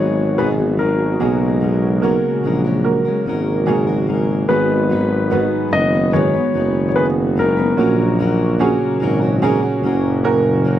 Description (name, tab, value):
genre	pop ballad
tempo	73 BPM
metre	4/4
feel	straight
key	unclear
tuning	A4 = 440 Hz
part	warm concert grand piano	melody	0.0-8.2 s	A#4 to D#5	-21 LUFS	left 3 dB	tape echo
part	warm upright piano	accompaniment	0.0-10.8 s	G#2 to B4	-21 LUFS	right 6 dB	none
part	warm analog pad	sustained chords	0.0-10.8 s	A#2 to F#4	-22 LUFS	right 1 dB	chorus
part	fingerpicked steel-string acoustic guitar	arpeggios	0.0-10.8 s	G#2 to B4	-23 LUFS	left 7 dB	none
part	warm tuba	bass	0.0-10.8 s	F#1 to B1	-18 LUFS	equal	none
room	little or no reverb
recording	dry, close 1970s-style studio recording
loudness	-14 LUFS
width	side -12 dB against mid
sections	0.0-4.5 A section; 4.5-10.8 B section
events	none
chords	0.0 G#m7; 1.2 F#add9; 4.5 G#m7; 7.8 F#